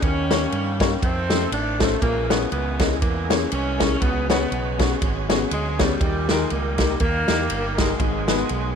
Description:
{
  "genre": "uptempo gospel",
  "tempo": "120 BPM",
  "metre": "4/4",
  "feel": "swing 57% on 8ths",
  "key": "unclear",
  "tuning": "A4 = 440 Hz",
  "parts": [
    { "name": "bright saxophone section", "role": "melody", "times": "0.0-8.8 s", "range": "A#2 to D4", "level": "-26 LUFS", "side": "right 1 dB", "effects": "tape echo" },
    { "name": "warm baby grand piano", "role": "accompaniment", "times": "0.0-8.7 s", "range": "G#2 to D#5", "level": "-26 LUFS", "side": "left 12 dB", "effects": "none" },
    { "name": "fingered electric bass", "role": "bass", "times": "0.0-8.8 s", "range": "G1 to G2", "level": "-26 LUFS", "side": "right 1 dB", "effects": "none" },
    { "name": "natural country drum kit", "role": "drums", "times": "0.0-8.6 s", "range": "kick drum, ride cymbal, snare drum", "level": "-23 LUFS", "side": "right 1 dB", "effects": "none" },
    { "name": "bright tonewheel organ", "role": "sustained chords", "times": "2.0-8.8 s", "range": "E3 to A#4", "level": "-32 LUFS", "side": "right 11 dB", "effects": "slow rotary speaker, overdrive, chorus vibrato" }
  ],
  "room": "light reverb, studio reverb",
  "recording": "1960s-style stereo with parts hard left and right",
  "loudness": "-19 LUFS",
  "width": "side -7 dB against mid",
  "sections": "0.0-8.8 A section",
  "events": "none",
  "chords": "0.0 D#7; 1.0 F7b13; 2.0 A#m7b5; 4.0 C#7sus4; 6.0 D#; 8.0 G#m7"
}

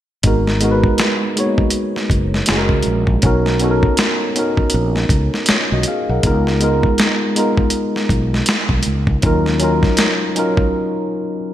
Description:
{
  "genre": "R&B, neo-soul",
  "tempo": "80 BPM",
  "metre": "4/4",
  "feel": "swing 60% on 16ths",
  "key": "G# dorian",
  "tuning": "A4 = 439 Hz",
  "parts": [
    { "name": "tine electric piano", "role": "accompaniment", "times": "0.2-11.5 s", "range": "F#3 to F#5", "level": "-18 LUFS", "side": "equal", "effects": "wide subtle chorus" },
    { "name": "fretless electric bass", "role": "bass", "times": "0.2-9.8 s", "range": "F#1 to D#2", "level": "-18 LUFS", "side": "equal", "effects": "none" },
    { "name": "dusty soul sampler-style drum kit", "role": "drums", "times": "0.2-10.7 s", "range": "hi-hat, kick drum, snare drum", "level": "-17 LUFS", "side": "equal", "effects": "overdrive, gated reverb" }
  ],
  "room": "moderate plate reverb, RT60 2.1 s",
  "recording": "bright 1980s-style digital production",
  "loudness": "-14 LUFS",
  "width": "side -12 dB against mid",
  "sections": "0.2-11.5 A section",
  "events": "break 10.7-11.5",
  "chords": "0.2 G#m9; 2.5 F#9; 3.2 Bmaj9; 6.2 C#13; 9.2 D#m9"
}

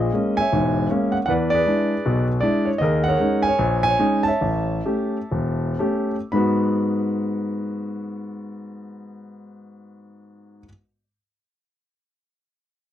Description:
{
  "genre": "solo jazz",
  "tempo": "110-157 BPM",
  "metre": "4/4",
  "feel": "swing 65% on 8ths",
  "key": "G# minor",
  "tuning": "A4 = 439 Hz",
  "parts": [
    { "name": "warm concert grand piano", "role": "solo", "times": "0.0-10.7 s", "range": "E1 to B5", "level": "-20 LUFS", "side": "equal", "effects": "none" }
  ],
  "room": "light reverb",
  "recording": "dry, close 1970s-style studio recording",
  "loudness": "-19 LUFS",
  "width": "side -11 dB against mid",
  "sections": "0.0-6.3 A section; 6.3-10.7 B section",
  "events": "slowing down 2.8-6.3",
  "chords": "0.0 A#m7b5; 1.3 E7; 2.8 D#7sus4; 4.4 A7; 6.3 G#m7"
}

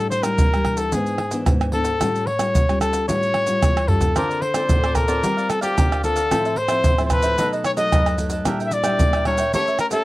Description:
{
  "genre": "samba and choro",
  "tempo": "112 BPM",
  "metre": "4/4",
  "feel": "straight",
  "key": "unclear",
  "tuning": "A4 = 439 Hz",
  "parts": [
    { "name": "clear trumpet", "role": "melody", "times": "0.0-10.0 s", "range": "G4 to E5", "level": "-21 LUFS", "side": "left 1 dB", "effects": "none" },
    { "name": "nylon-string guitar", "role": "accompaniment", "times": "0.0-10.0 s", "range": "F#2 to Bb4", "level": "-26 LUFS", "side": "left 2 dB", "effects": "none" },
    { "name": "maracas, pandeiro, tamborim and surdo", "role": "percussion", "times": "0.0-10.0 s", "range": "none", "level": "-21 LUFS", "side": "right 1 dB", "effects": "none" },
    { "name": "cavaquinho", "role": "accompaniment", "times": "4.2-10.0 s", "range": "D4 to G5", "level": "-27 LUFS", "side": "right 3 dB", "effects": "none" }
  ],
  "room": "moderate studio reverb, RT60 0.5 s",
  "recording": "home recording on cassette",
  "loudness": "-17 LUFS",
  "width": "side -18 dB against mid",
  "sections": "0.0-10.0 A section",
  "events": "drum fill 3.8-4.2",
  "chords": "0.0 A7sus4; 0.9 E7/G#; 2.0 A7b13; 4.2 Dm7; 5.2 Gm7; 6.3 Fmaj7/A; 7.4 B7; 8.5 Em7b5/Bb; 9.5 A7b9"
}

